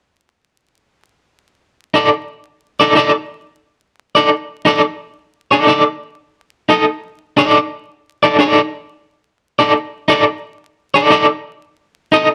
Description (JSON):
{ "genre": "funk", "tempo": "88 BPM", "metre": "4/4", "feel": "straight", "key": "unclear", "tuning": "A4 = 440 Hz", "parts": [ { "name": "electric guitar at the edge of break-up", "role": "accompaniment", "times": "1.9-12.3 s", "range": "D#4 to D#5", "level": "-13 LUFS", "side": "equal", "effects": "tremolo" } ], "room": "moderate studio reverb, RT60 0.8 s", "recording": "vinyl crackle", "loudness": "-15 LUFS", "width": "mono", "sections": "1.6-12.3 A section", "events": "none", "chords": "1.6 D5", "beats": "| 1.60 2.28 2.96 3.65 | 4.33 5.00 5.68 6.36 | 7.04 7.72 8.40 9.08 | 9.76 10.43 11.11 11.79" }